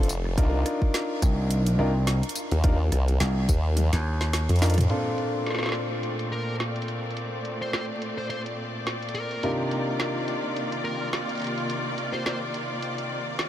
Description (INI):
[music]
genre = glitch hop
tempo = 106 BPM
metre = 4/4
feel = swing 56% on 16ths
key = C dorian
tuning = A4 = 440 Hz
[part]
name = clear concert grand piano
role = stabs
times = 0.0-13.5 s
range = Bb2 to Bb4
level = -31 LUFS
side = left 1 dB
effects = sidechain pumping, tape echo
[part]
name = formant-sweep wobble bass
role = bass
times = 0.0-4.9 s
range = F1 to F2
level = -22 LUFS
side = equal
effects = chorus, tube saturation
[part]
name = drum and bass drum kit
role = drums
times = 0.0-13.5 s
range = hi-hat, rim click, snare drum, tambourine, toms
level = -33 LUFS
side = equal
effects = low-pass filter on snare, low-pass filter on hats, low-pass filter on perc, low-pass filter on toms, low-pass filter on room
[part]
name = electronic kick drum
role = drums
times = 0.4-3.6 s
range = none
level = -22 LUFS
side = equal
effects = none
[part]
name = gritty slap bass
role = bass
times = 1.2-4.5 s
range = C2 to Eb2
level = -23 LUFS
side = equal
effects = overdrive
[part]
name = clear symphonic string section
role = sustained chords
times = 4.9-13.5 s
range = Bb2 to D5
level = -31 LUFS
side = equal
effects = sidechain pumping, low-pass filter
[part]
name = fuzz lead guitar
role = melody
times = 6.3-12.4 s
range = Bb4 to C5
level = -36 LUFS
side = equal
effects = distortion, tape echo
[sound]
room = moderate huge ambient reverb, RT60 7.9 s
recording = dreamy mix soaked in reverb, vinyl crackle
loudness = -24 LUFS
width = side -12 dB against mid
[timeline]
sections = 0.0-4.9 A section; 4.9-13.5 B section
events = kick drops out 3.8-4.9; drum fill 3.8-4.9; filter sweep on string section 4.9-13.5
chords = 0.4 Cm11; 4.9 Bbmaj9; 9.4 Cm11